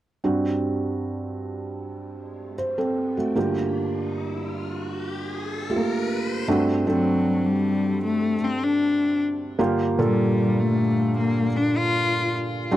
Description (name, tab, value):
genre	pop ballad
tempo	77 BPM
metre	4/4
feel	straight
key	G minor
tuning	A4 = 440 Hz
part	felt-muted upright piano	accompaniment	0.2-12.8 s	G2 to C5	-24 LUFS	right 2 dB	none
part	riser	sound effects	2.0-6.5 s	none	-36 LUFS	left 3 dB	none
part	rich cello	melody	6.9-12.3 s	F#3 to F4	-22 LUFS	left 3 dB	tape echo
room	light reverb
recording	dry, close 1970s-style studio recording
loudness	-21 LUFS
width	side -13 dB against mid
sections	0.2-6.5 A section; 6.5-12.8 B section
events	riser 2.0-6.5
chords	0.2 D7/G; 3.4 Gm7; 6.5 D7/G; 9.6 Gm7